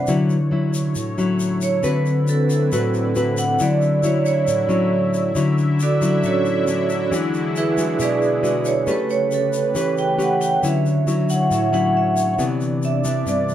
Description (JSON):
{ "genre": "bossa nova", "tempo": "136 BPM", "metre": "4/4", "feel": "straight", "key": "D major", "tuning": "A4 = 440 Hz", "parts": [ { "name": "nylon-string guitar", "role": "accompaniment", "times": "0.0-13.5 s", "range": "G2 to B4", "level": "-20 LUFS", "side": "left 2 dB", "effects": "none" }, { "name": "vibraphone with medium hard mallets", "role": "accompaniment", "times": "0.0-13.5 s", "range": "C#4 to G5", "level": "-20 LUFS", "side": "right 3 dB", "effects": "none" }, { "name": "sweeping resonant pad", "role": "sustained chords", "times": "0.0-13.5 s", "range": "C3 to E5", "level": "-26 LUFS", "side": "left 1 dB", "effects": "chorus" }, { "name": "tube shaker", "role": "percussion", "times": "0.1-13.5 s", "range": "none", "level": "-35 LUFS", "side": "left 5 dB", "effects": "none" } ], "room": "moderate studio reverb, RT60 0.5 s", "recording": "none", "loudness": "-17 LUFS", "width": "side -11 dB against mid", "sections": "0.0-5.4 A section; 5.4-13.5 A section", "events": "vibraphone solo 0.0-13.5", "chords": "0.1 Dmaj9; 1.8 D13; 3.6 Dmaj9; 7.1 E9; 8.9 A9; 10.6 Dmaj9; 12.4 Cmaj9", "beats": "| 0.08 0.52 0.96 1.40 | 1.84 2.28 2.72 3.16 | 3.60 4.04 4.47 4.92 | 5.35 5.79 6.23 6.67 | 7.11 7.55 7.99 8.43 | 8.87 9.31 9.75 10.19 | 10.63 11.06 11.50 11.94 | 12.38 12.82 13.26" }